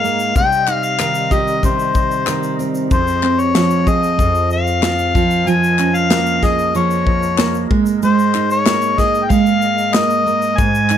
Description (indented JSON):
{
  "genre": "acoustic pop",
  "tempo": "94 BPM",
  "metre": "4/4",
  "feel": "straight",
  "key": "Ab major",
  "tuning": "A4 = 440 Hz",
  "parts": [
    { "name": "mellow harmonica", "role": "melody", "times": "0.0-11.0 s", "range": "C5 to Ab5", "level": "-17 LUFS", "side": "left 4 dB", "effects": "none" },
    { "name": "nylon-string guitar", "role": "accompaniment", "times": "0.0-11.0 s", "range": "F2 to Ab4", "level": "-17 LUFS", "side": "right 4 dB", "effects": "none" },
    { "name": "percussive tonewheel organ", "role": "sustained chords", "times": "0.0-11.0 s", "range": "F2 to Eb5", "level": "-26 LUFS", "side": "left 3 dB", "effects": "chorus vibrato, slow rotary speaker" },
    { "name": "modern studio drum kit", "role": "drums", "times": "0.0-11.0 s", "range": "kick drum, rim click, shaker, snare drum", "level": "-20 LUFS", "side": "left 1 dB", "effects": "none" },
    { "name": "group handclap", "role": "percussion", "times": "0.7-11.0 s", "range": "none", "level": "-24 LUFS", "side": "left 8 dB", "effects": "none" }
  ],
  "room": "light reverb",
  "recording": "close, detailed microphones",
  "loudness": "-13 LUFS",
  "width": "side -9 dB against mid",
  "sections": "0.0-11.0 A section",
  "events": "none",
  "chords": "0.4 Cm; 2.9 Fm; 5.2 Db6/F; 7.7 Absus2"
}